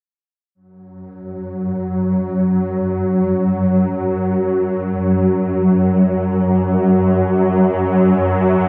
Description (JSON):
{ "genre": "ambient", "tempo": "free time", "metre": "none", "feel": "none", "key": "unclear", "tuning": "A4 = 442 Hz", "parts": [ { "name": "swarming drone", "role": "drone", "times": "1.3-8.7 s", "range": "F#2 to F#3", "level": "-17 LUFS", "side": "equal", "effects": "built-in reverb" } ], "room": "wet huge ambient reverb, RT60 8.1 s", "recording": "none", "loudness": "-17 LUFS", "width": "mono", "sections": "0.5-8.7 A section", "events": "none", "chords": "none" }